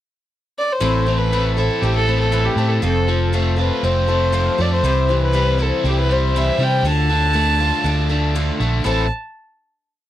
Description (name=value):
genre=rock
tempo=119 BPM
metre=4/4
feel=straight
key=A minor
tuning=A4 = 441 Hz
part: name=dark fiddle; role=melody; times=0.6-9.1 s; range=G4 to A5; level=-21 LUFS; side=equal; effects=none
part: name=picked twelve-string acoustic guitar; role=accompaniment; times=0.8-9.1 s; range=A2 to C5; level=-23 LUFS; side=left 5 dB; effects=none
part: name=overdriven electric guitar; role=riff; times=0.8-9.1 s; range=F2 to A4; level=-23 LUFS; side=right 1 dB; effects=none
part: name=fingered electric bass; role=bass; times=0.8-9.1 s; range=F1 to C3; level=-19 LUFS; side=equal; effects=none
room=light reverb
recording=dry, close 1970s-style studio recording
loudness=-16 LUFS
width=side -12 dB against mid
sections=0.0-0.8 pickup bar; 0.8-8.9 verse; 8.9-10.1 final chord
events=none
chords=0.0 N.C.; 0.8 Am; 2.8 F; 4.8 C; 6.8 Dm; 8.9 Am